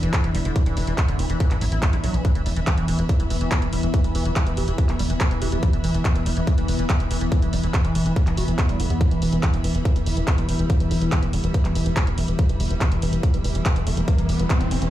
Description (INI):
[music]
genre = psychedelic trance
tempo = 142 BPM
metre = 4/4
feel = straight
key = E minor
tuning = A4 = 436 Hz
[part]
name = evolving wavetable pad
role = sustained chords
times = 0.0-14.9 s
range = E3 to D4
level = -28 LUFS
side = equal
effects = chorus, built-in reverb, sidechain pumping
[part]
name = liquid acid bass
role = riff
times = 0.0-14.9 s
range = D3 to F#4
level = -29 LUFS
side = equal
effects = chorus, auto-pan, vintage 12-bit sampler grit, sidechain pumping, ping-pong delay
[part]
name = tight sequencer bass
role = bass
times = 0.0-14.9 s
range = E1 to E2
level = -24 LUFS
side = equal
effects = none
[part]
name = drum and bass drum kit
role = drums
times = 0.0-14.9 s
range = handclaps, hi-hat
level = -30 LUFS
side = equal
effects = none
[part]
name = warm studio string section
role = texture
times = 0.0-14.9 s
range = B3 to B5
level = -33 LUFS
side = right 2 dB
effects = sidechain pumping
[part]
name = electronic kick drum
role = drums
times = 0.1-14.6 s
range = none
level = -20 LUFS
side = equal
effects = none
[part]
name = vowel-sweep wobble bass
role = second line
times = 3.5-5.6, 10.3-11.1 s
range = B3 to G4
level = -37 LUFS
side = right 5 dB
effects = chorus, sidechain pumping, high-pass filter, tape echo
[part]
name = riser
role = sound effects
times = 13.0-14.9 s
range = none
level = -33 LUFS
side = left 1 dB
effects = none
[sound]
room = little or no reverb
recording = played on a big sound system in a bare room, large studio reverb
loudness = -19 LUFS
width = side -13 dB against mid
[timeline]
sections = 0.0-14.9 A section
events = fade-in on string section 0.0-14.9; riser 13.0-14.9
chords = 0.0 E5